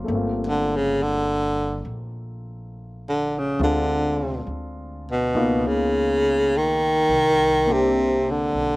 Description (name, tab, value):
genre	jazz ballad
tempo	69 BPM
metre	4/4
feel	swing 66% on 8ths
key	G minor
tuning	A4 = 441 Hz
part	warm concert grand piano	accompaniment	0.0-8.8 s	F#3 to G4	-27 LUFS	left 2 dB	slapback echo
part	upright bass	bass	0.0-8.8 s	G1 to D2	-31 LUFS	equal	none
part	clear baritone saxophone	melody	0.5-8.8 s	B2 to D#3	-20 LUFS	equal	none
room	little or no reverb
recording	recorded outdoors, with no room sound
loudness	-19 LUFS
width	side -20 dB against mid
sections	0.1-8.8 A section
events	baritone saxophone solo 0.1-8.8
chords	0.1 Gm11; 3.6 Dm7b5; 5.3 C#13; 7.1 Cm7